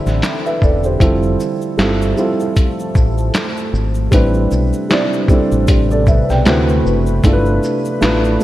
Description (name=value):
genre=lo-fi hip hop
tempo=77 BPM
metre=4/4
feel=swing 58% on 16ths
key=unclear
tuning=A4 = 440 Hz
part: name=dark upright piano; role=accompaniment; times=0.0-8.4 s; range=G3 to G5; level=-16 LUFS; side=right 1 dB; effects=cassette tape
part: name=deep dark ambient pad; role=sustained chords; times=0.0-8.4 s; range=C3 to B4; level=-23 LUFS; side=equal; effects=chorus, built-in reverb
part: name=deep dub fingered electric bass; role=bass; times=0.1-8.4 s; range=E1 to D2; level=-17 LUFS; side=equal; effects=none
part: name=lo-fi sampler-style drum kit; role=drums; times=0.1-8.4 s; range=handclaps, hi-hat, kick drum, shaker, snare drum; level=-15 LUFS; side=equal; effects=vintage 12-bit sampler grit
part: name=tube shaker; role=percussion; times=0.1-8.4 s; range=none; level=-42 LUFS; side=left 4 dB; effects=none
room=moderate lush hall reverb, RT60 2.1 s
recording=dreamy mix soaked in reverb, cassette tape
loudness=-12 LUFS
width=side -15 dB against mid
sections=0.0-8.4 A section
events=none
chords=0.0 Cmaj9; 1.0 Fmaj7; 4.1 Am11; 6.5 D13; 7.2 G13